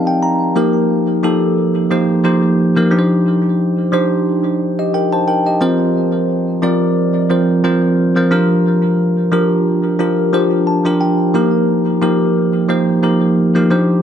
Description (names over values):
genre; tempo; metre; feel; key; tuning
pop; 89 BPM; 4/4; swing 55% on 16ths; unclear; A4 = 440 Hz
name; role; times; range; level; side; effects
bell-like tine electric piano; solo; 0.0-14.0 s; F3 to Bb5; -12 LUFS; equal; phaser, tape echo
room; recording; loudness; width
moderate recital hall reverb, RT60 1.5 s; none; -12 LUFS; side -9 dB against mid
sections
0.6-14.0 A section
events
tine electric piano fill 0.0-0.6, 10.3-11.3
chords
0.0 Cm7/F; 0.6 Eb/F; 2.9 Cmadd9/F; 5.6 Bbsus2/F; 8.3 Gm7/F; 11.3 Eb/F